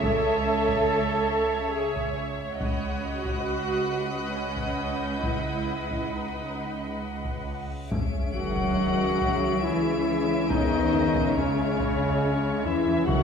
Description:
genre	cinematic, suspense film score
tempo	70 BPM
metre	3/4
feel	straight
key	C# minor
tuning	A4 = 445 Hz
part	muted studio violin section	melody	0.0-13.2 s	E5 to F#5	-37 LUFS	left 4 dB	none
part	muted studio violin section	second line	0.0-13.2 s	B4 to F#5	-33 LUFS	right 1 dB	none
part	muted studio viola section	accompaniment	0.0-13.2 s	C#4 to A4	-30 LUFS	right 2 dB	none
part	muted studio cello section	bass	0.0-13.2 s	C#2 to F#3	-31 LUFS	right 2 dB	none
part	muted studio double bass section	bass	0.0-13.2 s	C#2	-35 LUFS	right 2 dB	none
part	solo taiko drums	drums	0.0-13.2 s	none	-34 LUFS	left 2 dB	none
part	muted studio violin section	texture	0.0-13.2 s	C#5 to D7	-38 LUFS	left 4 dB	none
part	reverse cymbal and sub drop	sound effects	7.9-10.5 s	none	-35 LUFS	left 1 dB	none
part	warm trombone section	sustained chords	7.9-13.2 s	C#3 to A3	-35 LUFS	right 1 dB	none
part	clear clarinet	second line	8.3-13.2 s	C#4 to F#4	-28 LUFS	left 2 dB	none
part	mellow French horn section	sustained chords	8.4-13.2 s	D#3 to C#4	-31 LUFS	left 6 dB	none
part	timpani	percussion	13.1-13.2 s	C#3	-26 LUFS	equal	none
room	wet scoring stage reverb, RT60 1.7 s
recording	minimal, uncompressed stereo recording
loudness	-24 LUFS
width	side -6 dB against mid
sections	0.0-7.9 A section; 7.9-13.2 B section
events	reverse cymbal 7.9; impact 7.9-10.5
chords	0.0 C#m; 2.6 B/C#; 7.9 C#m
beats	| 0.04 0.90 1.75 | 2.61 3.47 4.35 | 5.24 6.14 7.03 | 7.92 8.79 9.65 | 10.51 11.37 12.23 | 13.09

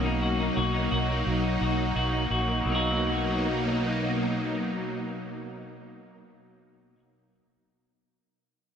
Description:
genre	dream pop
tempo	86 BPM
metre	4/4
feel	straight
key	B major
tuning	A4 = 442 Hz
part	string machine, violas	sustained chords	0.0-6.2 s	B2 to D#4	-28 LUFS	equal	ensemble chorus
part	semi-hollow electric guitar	arpeggios	0.0-7.0 s	B2 to F#4	-30 LUFS	left 2 dB	wide subtle chorus, digital delay
part	vintage muted fingered electric bass	bass	0.0-6.9 s	A#1 to B1	-31 LUFS	right 1 dB	none
room	wet lush hall reverb, RT60 3.1 s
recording	bright 1980s-style digital production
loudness	-25 LUFS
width	side -8 dB against mid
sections	0.0-2.7 A section; 2.7-5.4 B section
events	none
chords	0.0 Bmaj7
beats	0.56 1.26 1.96 | 2.66 3.35 4.05 4.75

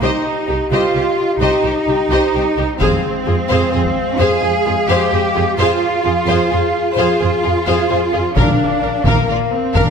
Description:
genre	cinematic, epic orchestral film score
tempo	86 BPM (dotted quarters)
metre	12/8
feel	straight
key	F dorian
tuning	A4 = 439 Hz
part	warm symphonic violin section	melody	0.0-9.9 s	G4 to F5	-26 LUFS	left 3 dB	none
part	rich studio violin section	second line	0.0-9.9 s	D4 to C5	-23 LUFS	left 3 dB	none
part	rich symphonic viola section	accompaniment	0.0-9.9 s	G4 to Bb4	-22 LUFS	equal	none
part	warm French horn section	sustained chords	0.0-9.9 s	Ab3 to F5	-21 LUFS	left 5 dB	none
part	rich symphonic cello section	bass	0.0-9.9 s	Bb3 to Ab4	-18 LUFS	right 4 dB	none
part	rich symphonic double bass section	bass	0.0-9.8 s	Bb1 to F2	-21 LUFS	right 3 dB	none
part	taiko ensemble	drums	2.8-4.1, 8.4-9.9 s	none	-19 LUFS	left 1 dB	none
room	moderate scoring stage reverb, RT60 2.1 s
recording	none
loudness	-13 LUFS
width	side -6 dB against mid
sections	0.0-9.9 A section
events	none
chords	0.0 Cm; 2.8 Fm; 8.4 Bb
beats	| 0.02 0.72 1.41 2.11 | 2.80 3.50 4.19 4.89 | 5.58 6.28 6.97 7.66 | 8.36 9.05 9.75

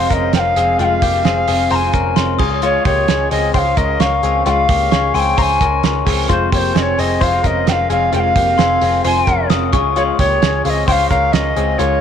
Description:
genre	jangly indie pop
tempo	131 BPM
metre	4/4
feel	straight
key	unclear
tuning	A4 = 440 Hz
part	alto recorder	melody	0.0-12.0 s	C5 to Bb5	-17 LUFS	left 1 dB	tape echo
part	glockenspiel with hard plastic mallets	second line	0.0-12.0 s	Ab5 to Eb6	-24 LUFS	left 10 dB	tape echo
part	electric guitar through a small old amp	accompaniment	0.0-12.0 s	F2 to F4	-27 LUFS	right 11 dB	none
part	mellow reed electric piano	accompaniment	0.0-12.0 s	C4 to Eb5	-27 LUFS	right 13 dB	fast tremolo
part	direct-recorded clean electric guitar	arpeggios	0.0-12.0 s	Ab3 to C5	-20 LUFS	left 11 dB	none
part	vintage muted picked electric bass	bass	0.0-12.0 s	F1 to Db2	-20 LUFS	equal	none
part	cloth-damped thuddy drum kit	drums	0.1-11.9 s	crash cymbal, hi-hat, kick drum, snare drum	-19 LUFS	right 4 dB	none
room	moderate spring reverb, RT60 2.0 s, studio ambience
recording	1960s-style stereo with parts hard left and right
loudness	-12 LUFS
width	side -8 dB against mid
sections	0.0-12.0 A section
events	none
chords	0.0 Fm; 2.4 Db; 6.3 Fm; 9.7 Db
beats	0.34 | 0.80 1.25 1.71 2.17 | 2.63 3.09 3.55 4.00 | 4.46 4.92 5.38 5.84 | 6.30 6.75 7.21 7.67 | 8.13 8.59 9.05 9.50 | 9.96 10.42 10.88 11.34 | 11.79

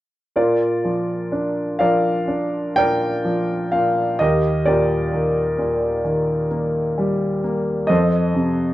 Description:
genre	classical, lyrical solo piano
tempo	64 BPM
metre	4/4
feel	rubato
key	Bb major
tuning	A4 = 439 Hz
part	warm grand piano	solo	0.4-8.7 s	Eb2 to G5	-17 LUFS	equal	none
room	light reverb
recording	dark, warm production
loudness	-18 LUFS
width	side -15 dB against mid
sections	0.4-8.7 A section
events	none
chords	0.4 Bb; 4.2 Eb; 7.9 F7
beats	| 0.36 1.32 2.28 3.24 | 4.20 5.12 6.04 6.97 | 7.90

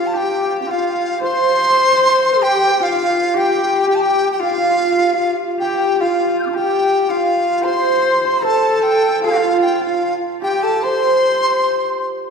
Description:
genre	chinese traditional, Chinese chamber ensemble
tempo	75 BPM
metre	2/4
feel	rubato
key	unclear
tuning	A4 = 439 Hz
part	mellow hollow dizi	melody	0.0-12.1 s	F5 to G6	-18 LUFS	equal	none
part	bright reedy low xiao	second line	0.0-12.0 s	C4 to C5	-21 LUFS	left 3 dB	none
part	clear horsehead fiddle	second line	0.0-12.0 s	F4 to C5	-21 LUFS	left 4 dB	none
part	hammered dulcimer	second line	0.0-12.3 s	F4 to C5	-20 LUFS	right 5 dB	none
room	wet concert hall reverb, RT60 1.9 s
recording	heard from further back in the room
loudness	-14 LUFS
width	side -5 dB against mid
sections	0.0-12.3 A section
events	none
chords	none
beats	0.42 | 1.23 2.02 | 2.81 3.61 | 4.41 5.21 | 6.02 6.84 | 7.65 8.44 | 9.23 10.03 | 10.84 11.66

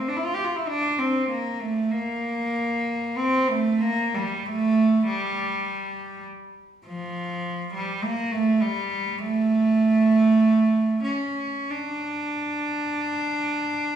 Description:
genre	classical, free, expressive piece for unaccompanied cello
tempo	43-52 BPM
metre	4/4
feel	rubato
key	D minor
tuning	A4 = 440 Hz
part	rich cello	solo	0.0-14.0 s	F3 to G4	-22 LUFS	right 2 dB	none
room	wet recital hall reverb, RT60 1.4 s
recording	recorded in a church or concert hall, small room ambience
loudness	-21 LUFS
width	side -9 dB against mid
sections	0.0-14.0 A section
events	none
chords	none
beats	0.68 | 1.91 3.17 4.44 5.64 | 6.84 8.02 9.18 10.38 | 11.69 13.07

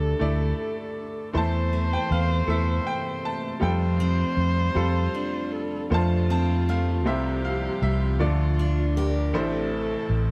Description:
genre	acoustic folk-pop ballad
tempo	53 BPM (dotted quarters)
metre	6/8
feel	straight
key	unclear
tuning	A4 = 440 Hz
part	bright upright piano	melody	0.0-10.3 s	F1 to A5	-31 LUFS	equal	none
part	dark viola	second line	0.0-10.3 s	F4 to C5	-34 LUFS	equal	none
part	picked steel-string acoustic guitar	arpeggios	0.0-9.7 s	A3 to A4	-35 LUFS	equal	none
part	fingered electric bass	bass	0.0-10.3 s	A1 to F2	-26 LUFS	equal	none
part	rich studio string section	sustained chords	1.3-10.3 s	C3 to F4	-39 LUFS	equal	none
room	little or no reverb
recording	close, detailed microphones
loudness	-25 LUFS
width	mono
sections	0.0-5.9 A section; 5.9-10.3 B section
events	none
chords	0.0 Dsus2; 1.3 Am/E; 3.6 Fadd9; 5.9 F; 7.1 Csus4; 8.2 Dm; 9.3 Am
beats	0.21 | 1.35 2.48 | 3.62 4.76 | 5.91 7.06 | 8.21 9.34

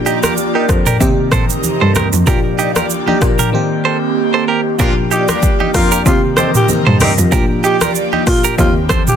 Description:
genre	afrobeats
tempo	95 BPM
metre	4/4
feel	swing 55% on 16ths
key	Bb major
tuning	A4 = 441 Hz
part	crystalline FM electric piano	accompaniment	0.0-9.2 s	Eb3 to D5	-19 LUFS	left 2 dB	chorus, plate reverb
part	airy breathy pad	sustained chords	0.0-9.2 s	C3 to D5	-20 LUFS	right 1 dB	chorus, phaser, sidechain pumping, plate reverb
part	rich cello	bass	0.0-9.1 s	Eb2 to C3	-17 LUFS	left 1 dB	none
part	direct-recorded clean electric guitar	riff	0.1-9.0 s	Eb4 to C5	-19 LUFS	right 7 dB	tape echo
part	afro-pop drum kit	drums	0.1-9.2 s	hi-hat, kick drum, rim click, shaker, toms	-15 LUFS	equal	none
part	congas	percussion	0.2-9.1 s	none	-24 LUFS	right 1 dB	none
part	mellow horn section	second line	4.8-7.1 s	F3 to C5	-21 LUFS	left 3 dB	plate reverb
part	breathy alto saxophone	melody	5.1-9.2 s	F4 to G4	-19 LUFS	equal	tape echo, plate reverb
room	light reverb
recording	dense, heavily limited modern master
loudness	-11 LUFS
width	side -8 dB against mid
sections	0.0-4.8 A section; 4.8-9.2 B section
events	none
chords	0.0 Bb6; 3.5 Eb6; 4.8 Bb6; 6.1 Cm7; 7.3 Bb6; 8.6 Eb6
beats	0.38 1.01 1.64 | 2.27 2.90 3.53 4.17 | 4.80 5.43 6.06 6.69 | 7.32 7.95 8.59

